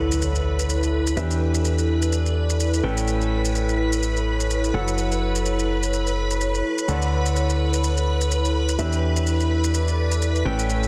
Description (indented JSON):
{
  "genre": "piano house",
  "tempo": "126 BPM",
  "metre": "4/4",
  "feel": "swing 57% on 16ths",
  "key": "D major",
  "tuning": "A4 = 436 Hz",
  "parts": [
    { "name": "string machine, violins", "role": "sustained chords", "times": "0.0-10.9 s", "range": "B4 to B5", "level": "-31 LUFS", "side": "equal", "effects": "ensemble chorus" },
    { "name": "bright upright piano", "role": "riff", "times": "0.0-10.9 s", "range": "A2 to G5", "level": "-31 LUFS", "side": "equal", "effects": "dub echo" },
    { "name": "solid FM bass", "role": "bass", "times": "0.0-10.9 s", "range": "F#1 to E2", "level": "-25 LUFS", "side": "equal", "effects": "none" },
    { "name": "impact", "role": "sound effects", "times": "0.0-1.2 s", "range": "none", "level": "-37 LUFS", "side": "equal", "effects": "none" },
    { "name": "airy breathy pad", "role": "texture", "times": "0.0-10.9 s", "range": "E4 to D5", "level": "-30 LUFS", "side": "equal", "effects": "chorus" },
    { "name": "shaker", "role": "drums", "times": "0.1-10.9 s", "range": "none", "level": "-34 LUFS", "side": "equal", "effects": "small room ambience" }
  ],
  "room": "moderate plate reverb, RT60 1.5 s, digital ambience",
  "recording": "dense, heavily limited modern master",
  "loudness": "-22 LUFS",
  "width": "mono",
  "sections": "0.0-10.9 A section",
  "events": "impact 0.0-1.2",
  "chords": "0.0 Dmaj7; 1.2 Em7; 2.8 A9; 4.7 F#m7; 6.9 Dmaj7; 8.8 Em7"
}